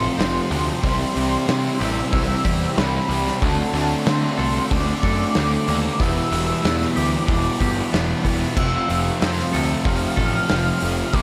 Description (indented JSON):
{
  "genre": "rock, shoegaze and dream pop",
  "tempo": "93 BPM",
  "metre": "4/4",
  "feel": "straight",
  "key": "unclear",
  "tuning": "A4 = 440 Hz",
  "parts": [
    { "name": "warm velvety synth lead", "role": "melody", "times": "0.0-11.2 s", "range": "A5 to F6", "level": "-30 LUFS", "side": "equal", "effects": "chorus, tape echo" },
    { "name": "twangy electric guitar", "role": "arpeggios", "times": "0.0-11.2 s", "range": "F3 to A4", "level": "-35 LUFS", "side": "equal", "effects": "none" },
    { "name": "cranked stack guitar", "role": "riff", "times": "0.0-11.2 s", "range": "E2 to D4", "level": "-30 LUFS", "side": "equal", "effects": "overdrive" },
    { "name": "overdriven electric guitar", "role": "riff", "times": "0.0-11.2 s", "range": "C3 to F#4", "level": "-30 LUFS", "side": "equal", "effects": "reverse reverb" },
    { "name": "thick fuzz guitar", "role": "riff", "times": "0.0-11.2 s", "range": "E2 to D4", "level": "-29 LUFS", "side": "equal", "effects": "distortion, analog chorus" },
    { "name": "fuzz picked electric bass", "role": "bass", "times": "0.0-11.2 s", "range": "E1 to D3", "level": "-27 LUFS", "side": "equal", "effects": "overdrive" },
    { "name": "loose indie drum kit", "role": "drums", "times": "0.2-11.2 s", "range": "crash cymbal, hi-hat, kick drum, snare drum", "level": "-27 LUFS", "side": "equal", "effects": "none" }
  ],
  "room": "light reverb, small room ambience",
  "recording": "none",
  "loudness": "-21 LUFS",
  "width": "mono",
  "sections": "0.0-11.2 A section",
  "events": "none",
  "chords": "0.0 F; 0.8 Cmaj7; 3.4 D7; 6.0 Em7; 8.6 Fmaj7"
}